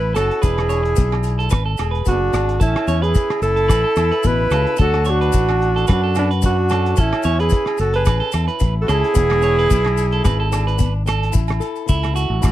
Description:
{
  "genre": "highlife guitar band",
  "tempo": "110 BPM",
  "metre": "4/4",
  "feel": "swing 54% on 16ths",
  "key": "A major",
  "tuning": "A4 = 440 Hz",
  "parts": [
    { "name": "breathy alto saxophone", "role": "melody", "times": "0.0-10.8 s", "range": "D4 to B4", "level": "-19 LUFS", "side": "right 3 dB", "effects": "none" },
    { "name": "breathy trumpet", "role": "second line", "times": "0.0-10.8 s", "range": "B3 to G#4", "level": "-27 LUFS", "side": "left 14 dB", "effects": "none" },
    { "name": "fingerpicked swing-style acoustic guitar", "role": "accompaniment", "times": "0.0-12.5 s", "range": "A2 to A4", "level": "-30 LUFS", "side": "left 10 dB", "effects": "none" },
    { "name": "fingered electric bass", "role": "bass", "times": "0.0-12.5 s", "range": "E1 to F#2", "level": "-19 LUFS", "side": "left 1 dB", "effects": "none" },
    { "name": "electric guitar at the edge of break-up", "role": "arpeggios", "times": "0.1-12.5 s", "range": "E4 to C#5", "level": "-25 LUFS", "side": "right 6 dB", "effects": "slapback echo" },
    { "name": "cloth-damped thuddy drum kit", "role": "drums", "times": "0.2-12.5 s", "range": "hi-hat, kick drum, rim click", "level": "-18 LUFS", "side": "left 1 dB", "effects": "none" },
    { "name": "agogo bells", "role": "percussion", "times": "0.2-12.5 s", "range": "none", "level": "-31 LUFS", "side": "right 19 dB", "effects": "none" },
    { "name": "maracas", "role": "percussion", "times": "0.2-12.5 s", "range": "none", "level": "-35 LUFS", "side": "left 22 dB", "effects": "none" }
  ],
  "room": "little or no reverb",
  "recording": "dry, close 1970s-style studio recording",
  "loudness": "-15 LUFS",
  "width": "side -14 dB against mid",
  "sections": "0.0-11.3 A section; 11.3-12.5 B section",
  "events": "clean electric guitar solo 11.3-12.5",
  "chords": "0.4 E7; 2.6 Aadd9; 4.8 Dmaj7; 7.0 Aadd9; 9.2 E7; 11.3 A"
}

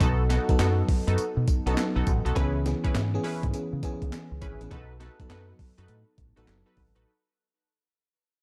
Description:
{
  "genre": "R&B, new jack swing",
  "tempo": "102 BPM",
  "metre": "4/4",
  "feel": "swing 64% on 16ths",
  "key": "unclear",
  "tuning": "A4 = 440 Hz",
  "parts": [
    { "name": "FM electric piano", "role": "accompaniment", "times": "0.0-7.1 s", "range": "E3 to A4", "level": "-34 LUFS", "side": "equal", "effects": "chorus" },
    { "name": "funky polysynth comp", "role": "stabs", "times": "0.0-7.1 s", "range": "B3 to B4", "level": "-36 LUFS", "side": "equal", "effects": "chorus" },
    { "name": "deep dub fingered electric bass", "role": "bass", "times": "0.0-7.0 s", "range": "F#1 to C#3", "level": "-29 LUFS", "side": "equal", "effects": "none" },
    { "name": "breakbeat sampler-style drum kit", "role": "drums", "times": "0.0-7.1 s", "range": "handclaps, hi-hat, kick drum, snare drum, tambourine", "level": "-30 LUFS", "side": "equal", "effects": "overdrive" }
  ],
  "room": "digital ambience",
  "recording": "dark, warm production",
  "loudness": "-26 LUFS",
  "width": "mono",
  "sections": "0.0-7.1 A section",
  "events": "fade-out 0.0-7.1",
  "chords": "0.0 B7; 2.4 C#m7; 4.7 B7"
}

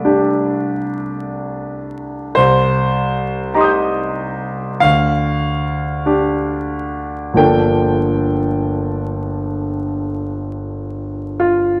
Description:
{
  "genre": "classical, impressionist solo piano",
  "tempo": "43-53 BPM",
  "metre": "4/4",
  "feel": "rubato",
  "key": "G minor",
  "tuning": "A4 = 440 Hz",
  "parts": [
    { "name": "clear concert grand piano", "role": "solo", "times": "0.0-11.8 s", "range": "G1 to G6", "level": "-18 LUFS", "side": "equal", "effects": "none" }
  ],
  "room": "moderate scoring stage reverb, RT60 1.6 s",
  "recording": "vinyl crackle",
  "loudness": "-18 LUFS",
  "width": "mono",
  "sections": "0.0-11.8 A section",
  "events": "none",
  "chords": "0.0 Am7/C; 2.4 Cm7; 4.8 Dsus4; 7.4 Gm9"
}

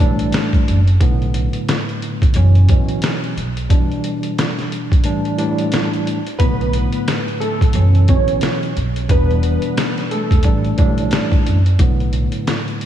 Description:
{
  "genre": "hip hop, boom-bap hip-hop",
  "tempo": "89 BPM",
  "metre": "4/4",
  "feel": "swing 60% on 16ths",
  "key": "B minor",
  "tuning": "A4 = 436 Hz",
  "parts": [
    { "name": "dark upright piano", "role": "melody", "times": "0.0-0.5, 6.4-11.3 s", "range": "A3 to C#5", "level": "-23 LUFS", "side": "equal", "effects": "ensemble chorus, tape echo" },
    { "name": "tine electric piano", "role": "accompaniment", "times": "0.0-12.9 s", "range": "A2 to D4", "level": "-21 LUFS", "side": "equal", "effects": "overdrive, medium stereo tremolo, cassette tape" },
    { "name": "upright bass", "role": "bass", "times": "0.0-12.2 s", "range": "E1 to B1", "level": "-16 LUFS", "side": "equal", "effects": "none" },
    { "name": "trip hop sampler-style drum kit", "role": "drums", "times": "0.0-12.9 s", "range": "hi-hat, kick drum, snare drum", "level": "-17 LUFS", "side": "equal", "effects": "none" }
  ],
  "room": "light reverb, digital ambience",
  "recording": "none",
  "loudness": "-14 LUFS",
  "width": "side -11 dB against mid",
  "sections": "0.0-12.9 A section",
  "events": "break 3.7-6.4; kick muted 5.1-6.4",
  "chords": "0.0 A7sus4; 1.0 Bm7; 2.4 F#7sus4; 3.7 Em7; 5.1 A7sus4; 6.4 Bm7; 7.7 F#7sus4; 9.1 Em7; 10.4 A7sus4; 11.8 Bm7"
}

